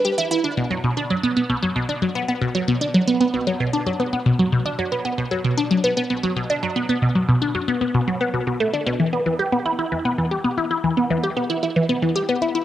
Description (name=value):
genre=ambient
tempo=114 BPM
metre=4/4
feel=straight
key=B minor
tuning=A4 = 440 Hz
part: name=resonant blip pluck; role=solo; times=0.0-12.6 s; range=B2 to G4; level=-19 LUFS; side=equal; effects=phaser, cassette tape, tape echo
room=wet spring reverb, RT60 1.6 s, digital ambience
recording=home recording on cassette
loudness=-19 LUFS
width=side -12 dB against mid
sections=0.0-9.0 A section; 9.0-12.6 B section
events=none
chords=none